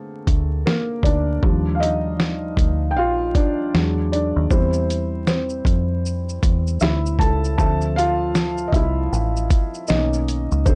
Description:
lo-fi hip hop; 78 BPM; 4/4; swing 61% on 16ths; D minor; A4 = 440 Hz
felt-muted upright piano; accompaniment; 0.0-10.8 s; D3 to A5; -25 LUFS; equal; low-pass filter
deep dub fingered electric bass; bass; 0.3-10.8 s; A1 to F2; -24 LUFS; equal; transformer saturation
lo-fi sampler-style drum kit; drums; 0.3-10.8 s; hi-hat, kick drum, shaker, snare drum; -22 LUFS; equal
little or no reverb; dry, gritty hardware recording, vinyl crackle, nothing above 10.6 kHz; -20 LUFS; mono
0.0-10.8 A section
felt piano solo 0.0-10.8
0.0 Bbmaj7/D; 1.4 Ebmaj7; 3.7 E7; 4.5 Am7/E; 7.6 Dm7; 9.9 Bmaj7

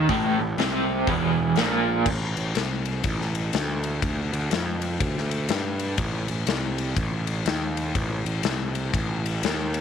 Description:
blues rock power trio and southern rock; 122 BPM; 4/4; swing 63% on 8ths; A4 = 440 Hz
crunchy overdriven guitar; riff; 0.0-2.1 s; E2 to C4; -22 LUFS; right 2 dB; tremolo
fuzz picked electric bass; bass; 0.0-9.8 s; E1 to G2; -27 LUFS; right 1 dB; overdrive
big rock drum kit; drums; 0.1-9.8 s; crash cymbal, hi-hat, kick drum, ride cymbal, snare drum; -28 LUFS; left 5 dB
light reverb, small room reverb; 1960s-style stereo; -23 LUFS; side -8 dB against mid
0.0-2.1 A section; 2.1-9.8 B section
0.0 Adim; 1.1 N.C.; 2.1 Amadd11; 4.0 Dmadd11; 6.0 Adim

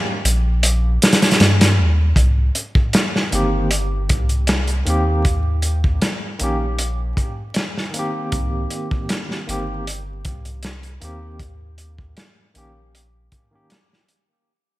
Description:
trip hop; 78 BPM; 4/4; straight; A4 = 440 Hz
soft dub sub bass; bass; 0.2-13.3 s; G1 to G2; -19 LUFS; equal
crunchy breakbeat drum kit; drums; 0.3-14.3 s; hi-hat, kick drum, snare drum; -18 LUFS; equal; gated reverb
barky tine electric piano; accompaniment; 3.3-13.8 s; Eb3 to G4; -26 LUFS; equal; overdrive, tremolo, tape echo
light reverb, small room ambience; bright 1980s-style digital production, vinyl crackle; -16 LUFS; side -17 dB against mid
0.0-2.2 A section; 2.2-14.5 B section
fade-out 2.2-14.5
0.0 D#; 2.2 Cm7; 5.2 D#; 8.3 Cm7; 11.4 D#7

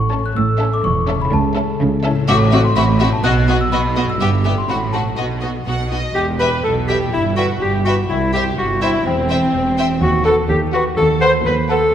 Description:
cinematic, playful, whimsical film cue; 125 BPM; 2/4; straight; E minor; A4 = 440 Hz
large celesta; melody; 0.0-11.9 s; C5 to F#6; -23 LUFS; left 4 dB
concert harp; arpeggios; 0.0-11.9 s; E2 to C5; -25 LUFS; left 5 dB
clear studio cello section; bass; 0.0-11.8 s; C2 to C#3; -22 LUFS; right 3 dB
warm studio double bass section; bass; 0.0-11.8 s; E1 to D#2; -20 LUFS; right 3 dB
rich studio violin section; melody; 0.1-11.9 s; D#5 to A5; -29 LUFS; left 2 dB
warm studio violin section; second line; 0.1-11.9 s; F#4 to F#5; -25 LUFS; left 2 dB
dark studio viola section; accompaniment; 0.1-11.8 s; B3 to C5; -25 LUFS; right 2 dB
dark French horn section; sustained chords; 0.1-6.0 s; A3 to F#4; -33 LUFS; left 2 dB
clear clarinet; second line; 6.1-11.9 s; C4 to C5; -18 LUFS; equal
wet scoring stage reverb, RT60 1.8 s; -14 LUFS; side -9 dB against mid
0.0-6.2 A section; 6.2-11.9 B section
0.4 A; 1.3 A/C#; 2.3 F#m7b5/A; 3.2 B; 4.2 Em/G; 4.7 F#dim/A; 5.2 B; 6.2 Em; 7.1 Em/G; 8.1 C; 9.1 C/E; 10.0 B/D#; 11.0 B7/D#

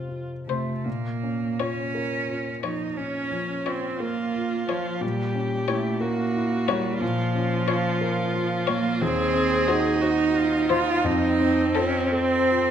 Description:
classical, slow romantic movement for piano quartet; 50-61 BPM (dotted quarters); 12/8; rubato; Bb minor; A4 = 440 Hz
rich viola; accompaniment; 0.0-12.7 s; C4 to Ab4; -29 LUFS; equal
warm grand piano; accompaniment; 0.0-12.7 s; Eb2 to C5; -28 LUFS; left 2 dB
rich violin; melody; 0.5-12.0 s; A4 to Db5; -29 LUFS; left 8 dB
clear cello; second line; 0.5-12.7 s; F3 to F4; -25 LUFS; right 4 dB
moderate recital hall reverb, RT60 1.4 s; -22 LUFS; side -9 dB against mid
0.0-12.7 A section
0.0 F; 0.9 Bbm; 5.0 Bbdim7; 7.0 Bbm; 9.0 Cdim/Eb; 11.1 F7

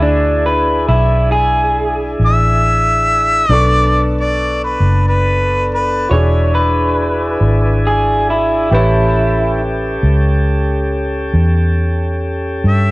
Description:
blues; 46 BPM (dotted quarters); 12/8; straight; E mixolydian; A4 = 442 Hz
electric guitar through a small old amp; second line; 0.0-9.6 s; D4 to C#5; -16 LUFS; equal; cassette tape, tape echo
clear grand piano; accompaniment; 0.0-12.9 s; D4 to C#6; -24 LUFS; right 1 dB; cassette tape
tonewheel organ; sustained chords; 0.0-12.9 s; B3 to A4; -20 LUFS; equal; slow rotary speaker, cassette tape
vintage muted fingered electric bass; bass; 0.0-12.9 s; E1 to G2; -15 LUFS; equal; tube saturation
warm harmonica; melody; 2.3-12.9 s; B4 to E5; -15 LUFS; equal; overdrive, cassette tape
light reverb; home recording on cassette; -12 LUFS; side -21 dB against mid
0.0-12.9 A section
0.0 E7; 3.5 Bm7; 6.1 E7; 8.7 A7

